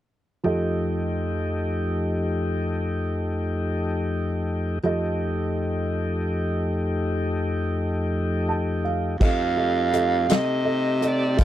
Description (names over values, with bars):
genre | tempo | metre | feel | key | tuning
slow blues | 55 BPM (dotted quarters) | 12/8 | straight | F mixolydian | A4 = 440 Hz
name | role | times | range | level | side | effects
dark upright piano | accompaniment | 0.4-11.4 s | F3 to A5 | -30 LUFS | right 3 dB | none
tonewheel organ | sustained chords | 0.4-11.4 s | F2 to G4 | -25 LUFS | left 1 dB | slow rotary speaker
overdriven slide guitar | melody | 9.2-11.4 s | D5 to F5 | -24 LUFS | right 4 dB | none
breathy baritone saxophone | bass | 9.2-11.4 s | F2 to F3 | -24 LUFS | equal | none
natural country drum kit | drums | 9.2-11.4 s | crash cymbal, hi-hat, kick drum, snare drum | -21 LUFS | equal | none
room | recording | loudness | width
light reverb | dry, close 1970s-style studio recording | -22 LUFS | side -12 dB against mid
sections
0.5-9.2 A section; 9.2-11.4 B section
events
upright piano fill 8.1-9.2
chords
0.5 F7; 9.2 F9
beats
| 0.46 1.55 2.65 3.74 | 4.83 5.93 7.02 8.11 | 9.21 10.30 11.39